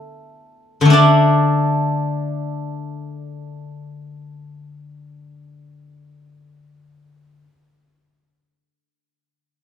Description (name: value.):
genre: chinese traditional, Chinese solo plucked strings.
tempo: free time.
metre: none.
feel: none.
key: unclear.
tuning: A4 = 441 Hz.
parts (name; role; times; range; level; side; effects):
steel-string zither; solo; 0.0-7.4 s; D3 to D5; -16 LUFS; left 1 dB; none.
room: moderate studio reverb, RT60 0.7 s.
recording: band playing live in one room.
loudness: -14 LUFS.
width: side -9 dB against mid.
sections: 0.9-5.9 A section.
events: none.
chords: none.